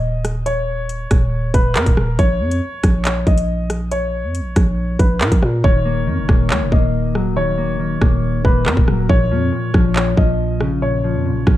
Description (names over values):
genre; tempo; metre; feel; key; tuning
hip hop, drill; 139 BPM; 4/4; half-time; Eb minor; A4 = 441 Hz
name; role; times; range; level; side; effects
dark baby grand piano; melody; 0.0-11.6 s; Bb4 to Eb5; -23 LUFS; left 1 dB; low-pass filter
growling 808-style bass; bass; 0.0-11.6 s; Eb1 to Bb2; -20 LUFS; equal; none
drill drum kit; drums; 0.2-11.6 s; handclaps, hi-hat, kick drum, rim click; -16 LUFS; equal; none
mellow electric guitar; accompaniment; 5.6-11.6 s; Bb2 to Bb3; -20 LUFS; left 2 dB; low-pass filter
room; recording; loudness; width
light reverb; dark, warm production; -15 LUFS; side -14 dB against mid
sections
0.0-11.6 A section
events
hi-hats muted 5.6-11.6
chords
0.0 Eb7(no3); 2.2 Bbm; 5.6 Ebm7; 9.1 Bbm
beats
0.03 | 0.46 0.89 1.32 1.76 | 2.19 2.62 3.05 3.48 | 3.92 4.35 4.78 5.21 | 5.64 6.07 6.50 6.94 | 7.37 7.80 8.23 8.66 | 9.10 9.53 9.96 10.39 | 10.82 11.25